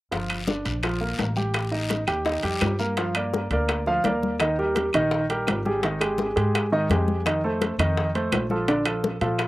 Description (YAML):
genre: latin, salsa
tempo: 168 BPM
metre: 4/4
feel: straight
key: G minor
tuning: A4 = 440 Hz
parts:
  - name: clear grand piano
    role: accompaniment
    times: 0.1-9.5 s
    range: D3 to G5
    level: -24 LUFS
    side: right 1 dB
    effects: slapback echo
  - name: upright bass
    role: bass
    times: 0.1-9.5 s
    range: G1 to Bb2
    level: -28 LUFS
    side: equal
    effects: none
  - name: bongos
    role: percussion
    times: 0.1-9.5 s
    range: none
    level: -31 LUFS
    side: left 6 dB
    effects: none
  - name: congas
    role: percussion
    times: 0.1-9.5 s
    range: none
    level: -31 LUFS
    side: left 3 dB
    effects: none
  - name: guiro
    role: percussion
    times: 0.1-3.0 s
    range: none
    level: -36 LUFS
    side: left 3 dB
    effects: slapback echo
  - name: timbales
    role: percussion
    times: 0.1-9.5 s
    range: none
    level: -31 LUFS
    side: right 4 dB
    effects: none
  - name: claves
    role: percussion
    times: 0.3-9.5 s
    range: none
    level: -35 LUFS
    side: left 3 dB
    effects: none
room: little or no reverb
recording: recorded outdoors, with no room sound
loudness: -22 LUFS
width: side -17 dB against mid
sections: 0.1-3.0 A section; 3.0-9.5 B section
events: none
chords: 0.1 Gm7; 1.5 Eb; 3.0 Gm7; 4.4 Eb; 5.8 Ab5; 7.3 F7; 8.7 Bbmaj7